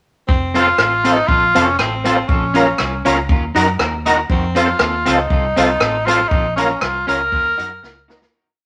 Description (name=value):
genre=ska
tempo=120 BPM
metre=4/4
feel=straight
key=unclear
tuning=A4 = 440 Hz
part: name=clear tenor saxophone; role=melody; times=0.3-8.1 s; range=C4 to Bb4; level=-20 LUFS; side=equal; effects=none
part: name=vintage muted fingered electric bass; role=bass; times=0.3-8.3 s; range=F1 to Gb2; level=-27 LUFS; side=equal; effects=none
part: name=swinging big-band drum kit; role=drums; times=0.3-8.3 s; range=hi-hat, kick drum, rim click, snare drum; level=-22 LUFS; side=equal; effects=none
part: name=electric guitar at the edge of break-up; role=accompaniment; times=0.5-8.2 s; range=C4 to Bb4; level=-22 LUFS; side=equal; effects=tape echo
part: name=tonewheel organ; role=stabs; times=0.5-8.2 s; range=C4 to Bb4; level=-22 LUFS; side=equal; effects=chorus vibrato, slow rotary speaker
room=moderate studio reverb, RT60 0.8 s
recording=none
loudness=-16 LUFS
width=mono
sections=0.3-8.3 head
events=fade-out 6.3-8.3; drum fill 7.8-8.3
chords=0.3 F; 2.3 Bbm; 3.3 Ebm; 4.3 F; 6.3 Bbm; 7.3 Ebm